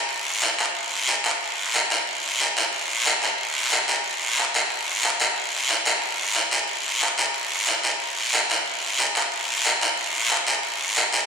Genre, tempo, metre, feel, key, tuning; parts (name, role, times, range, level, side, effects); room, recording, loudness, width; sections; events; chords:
latin; 182 BPM; 4/4; straight
guiro; percussion; 0.1-11.3 s; -20 LUFS; equal
wet scoring stage reverb, RT60 1.9 s; recorded in a church or concert hall; -20 LUFS; side -6 dB against mid
0.0-8.0 A section; 8.0-11.3 A section